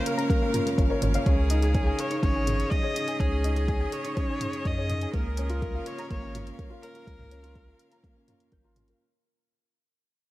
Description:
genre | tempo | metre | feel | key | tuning
piano and strings electronica | 124 BPM | 4/4 | straight | unclear | A4 = 440 Hz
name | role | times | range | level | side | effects
warm viola | melody | 0.0-8.5 s | Ab4 to Eb5 | -34 LUFS | left 1 dB | digital delay
bright string quartet | sustained chords | 0.0-9.0 s | Db3 to F5 | -37 LUFS | equal | sidechain pumping
soft round pluck | arpeggios | 0.0-9.0 s | Bb4 to G6 | -38 LUFS | left 3 dB | chorus, sidechain pumping, digital delay
felt-muted upright piano | riff | 0.0-9.0 s | Bb3 to Db5 | -31 LUFS | equal | none
deep house drum kit | drums | 0.1-9.0 s | hi-hat, toms | -35 LUFS | equal | none
electronic kick drum | drums | 0.3-8.6 s | none | -27 LUFS | equal | none
round analog bass | bass | 0.8-8.9 s | Ab1 to Gb2 | -28 LUFS | equal | sidechain pumping
room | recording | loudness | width
little or no reverb | none | -24 LUFS | side -16 dB against mid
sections
0.0-9.0 A section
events
drop 0.0-9.0; fade-out 1.3-9.0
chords
0.0 Bbm; 1.3 Dbsus2; 5.1 Bbm

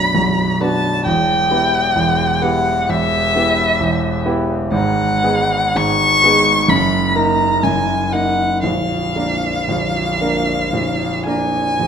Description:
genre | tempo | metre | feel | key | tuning
classical, romantic duo for violin and grand piano | 55-67 BPM | 4/4 | rubato | Eb minor from 4.7 s | A4 = 439 Hz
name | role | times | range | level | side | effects
warm violin | melody | 0.0-11.9 s | E5 to Db6 | -16 LUFS | left 1 dB | none
clear concert grand piano | accompaniment | 0.0-11.9 s | Bb0 to Bb4 | -17 LUFS | right 1 dB | none
room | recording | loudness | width
wet recital hall reverb, RT60 1.4 s | none | -14 LUFS | side -7 dB against mid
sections
0.0-11.9 A section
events
none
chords
0.0 Bm; 1.1 Em; 4.7 Abm7; 6.7 Ebm/Gb; 8.6 Bb

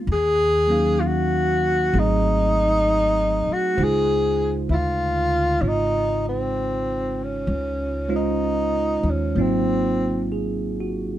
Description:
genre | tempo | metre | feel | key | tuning
jazz ballad | 65 BPM | 4/4 | swing 66% on 8ths | Db major | A4 = 440 Hz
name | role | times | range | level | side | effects
bell-like tine electric piano | accompaniment | 0.0-11.2 s | Db3 to F5 | -25 LUFS | right 2 dB | wide subtle chorus
breathy tenor saxophone | melody | 0.1-10.3 s | C4 to Ab4 | -21 LUFS | equal | none
upright bass | bass | 0.1-11.2 s | Ab1 to Eb2 | -26 LUFS | equal | none
room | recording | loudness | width
light reverb | none | -19 LUFS | side -12 dB against mid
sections
0.0-11.2 A section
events
none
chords
0.1 Ebm9; 1.9 Ab7b9; 3.8 Dbmaj9; 9.4 Ab13

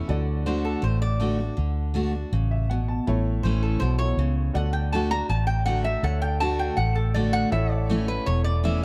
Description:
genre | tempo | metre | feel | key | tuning
honky-tonk and classic country | 161 BPM | 4/4 | straight | D major | A4 = 439 Hz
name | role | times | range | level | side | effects
clear upright piano | accompaniment | 0.0-8.8 s | E4 to A5 | -40 LUFS | equal | none
picked steel-string acoustic guitar | accompaniment | 0.0-8.8 s | E2 to F#4 | -31 LUFS | equal | none
pedal steel guitar | sustained chords | 0.0-0.1, 6.0-8.8 s | A4 to F#5 | -39 LUFS | equal | none
vintage muted fingered electric bass | bass | 0.1-8.8 s | E1 to D2 | -27 LUFS | equal | none
lap resonator guitar | second line | 0.5-8.8 s | A4 to Bb5 | -32 LUFS | equal | none
room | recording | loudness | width
little or no reverb | dark, warm production | -24 LUFS | mono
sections
0.1-8.8 A section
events
resonator guitar played with a steel bar solo 0.1-8.8; upright piano fill 2.3-3.1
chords
0.1 D; 3.1 A; 4.6 D; 7.5 A

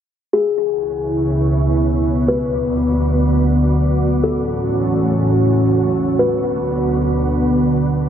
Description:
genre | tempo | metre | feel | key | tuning
hip hop | free time | none | none | D major | A4 = 439 Hz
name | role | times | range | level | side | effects
kalimba | melody | 0.3-6.6 s | G#4 to B4 | -22 LUFS | left 4 dB | low-pass filter, digital delay
dark analog pad | sustained chords | 0.9-8.1 s | C#2 to F#4 | -15 LUFS | right 1 dB | chorus
twinkling granular texture | texture | 0.9-8.1 s | A3 to D5 | -26 LUFS | equal | built-in reverb
room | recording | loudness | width
moderate shimmer reverb, RT60 5.2 s | low-pass filter | -15 LUFS | side -9 dB against mid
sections
0.3-8.1 A section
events
filter sweep 0.3-8.1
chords
0.3 C#m7; 2.3 D6; 4.2 A6; 6.2 D6

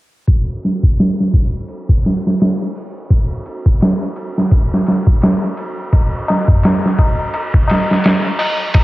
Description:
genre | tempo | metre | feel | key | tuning
trip hop | 85 BPM | 4/4 | swing 57% on 16ths | none | none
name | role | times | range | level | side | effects
trip hop sampler-style drum kit | drums | 0.3-8.8 s | hi-hat, kick drum, ride cymbal, snare drum | -13 LUFS | equal | cassette tape
tabla | percussion | 5.9-8.8 s | none | -20 LUFS | left 2 dB | none
room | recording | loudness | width
light reverb, digital ambience | home recording on cassette, low-pass filter | -13 LUFS | side -18 dB against mid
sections
0.3-8.8 A section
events
filter sweep 0.3-8.8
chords
none

